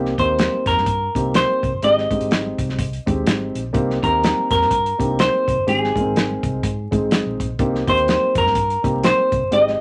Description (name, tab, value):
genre	uptempo 1960s-style soul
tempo	125 BPM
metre	4/4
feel	swing 59% on 8ths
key	C minor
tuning	A4 = 440 Hz
part	dark upright piano	accompaniment	0.0-9.7 s	Ab3 to Bb4	-26 LUFS	equal	none
part	vintage muted fingered electric bass	bass	0.0-9.7 s	G1 to Ab2	-29 LUFS	equal	none
part	warm soul drum kit	drums	0.1-9.7 s	hi-hat, kick drum, snare drum	-25 LUFS	equal	none
part	semi-hollow electric guitar	melody	0.2-9.8 s	Ab4 to Eb5	-21 LUFS	equal	none
room	wet club ambience, RT60 0.5 s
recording	vinyl crackle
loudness	-19 LUFS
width	mono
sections	0.0-9.8 A section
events	none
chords	0.0 Cm7; 1.8 Abmaj7; 3.7 Cm7; 5.7 Ab; 7.6 Cm7